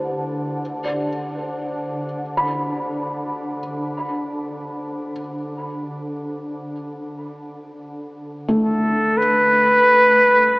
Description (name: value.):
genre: ambient.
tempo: 56 BPM.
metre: 4/4.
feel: straight.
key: unclear.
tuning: A4 = 440 Hz.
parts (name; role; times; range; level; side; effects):
felt-muted upright piano; arpeggios; 0.0-10.6 s; A3 to B5; -25 LUFS; equal; diffuse ambient delay.
organ-like drone; drone; 0.0-9.3 s; D3; -29 LUFS; equal; ensemble chorus, built-in reverb.
clear flugelhorn; melody; 8.6-10.6 s; A4 to B4; -13 LUFS; equal; none.
warm sub bass; bass; 9.2-10.6 s; C2; -51 LUFS; equal; none.
room: wet huge ambient reverb, RT60 7.9 s.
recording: in a vast, echoing space, cassette tape, AM radio sound.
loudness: -18 LUFS.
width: side -27 dB against mid.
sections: 0.0-9.2 A section; 9.2-10.6 B section.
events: fade-in on felt piano 0.0-9.2.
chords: 0.0 C; 0.6 D5; 9.2 C5.